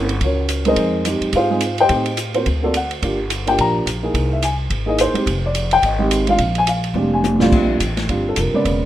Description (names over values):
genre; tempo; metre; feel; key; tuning
jazz piano trio; 213 BPM; 4/4; swing 59% on 8ths; unclear; A4 = 440 Hz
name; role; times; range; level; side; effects
dark upright piano; melody; 0.0-8.9 s; Bb2 to Bb5; -18 LUFS; equal; none
upright bass; bass; 0.0-8.9 s; E1 to A2; -22 LUFS; equal; none
open jazz drum kit; drums; 0.1-8.7 s; crash cymbal, hi-hat, kick drum, ride cymbal, snare drum, toms; -23 LUFS; right 1 dB; none
room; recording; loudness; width
light reverb, small room ambience; rough home demo mix; -16 LUFS; side -12 dB against mid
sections
0.0-7.5 A section; 7.5-8.9 B section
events
drum fill 7.0-7.5; upright piano solo 7.5-8.9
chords
0.0 Gb(#11); 0.8 Fm7; 1.9 Am7b5; 2.5 D; 3.0 Gm7; 4.1 C7alt; 5.3 Fm9; 6.4 Bb13; 7.5 Bb6